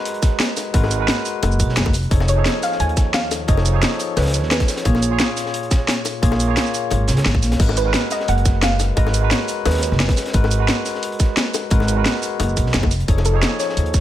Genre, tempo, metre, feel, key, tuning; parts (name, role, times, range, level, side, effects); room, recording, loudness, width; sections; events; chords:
liquid drum and bass; 175 BPM; 4/4; straight; G# dorian; A4 = 440 Hz
barky tine electric piano; accompaniment; 0.0-14.0 s; A#2 to A#5; -24 LUFS; moving between left 2 dB and right 4 dB; overdrive, auto-pan, dub echo
crunchy breakbeat drum kit; drums; 0.1-14.0 s; hi-hat, snare drum; -30 LUFS; equal; high-pass filter on hats, high-pass filter on snare, high-pass filter on room
drum and bass drum kit; drums; 0.1-14.0 s; crash cymbal, hi-hat, shaker, snare drum; -22 LUFS; equal
electronic kick drum; drums; 0.2-14.0 s; -17 LUFS; equal
bongos; percussion; 0.6-13.2 s; -28 LUFS; left 8 dB
upright bass; bass; 0.7-14.0 s; F1 to Eb2; -19 LUFS; equal
soft round pluck; melody; 2.3-5.5, 7.8-11.0, 13.3-14.0 s; A4 to G#5; -25 LUFS; right 2 dB; analog chorus, cassette tape, dub echo
light reverb; -16 LUFS; side -12 dB against mid
0.0-14.0 A section
0.0 G#m9; 1.9 F7alt; 4.9 A#m7; 7.6 G#m9; 12.9 F7alt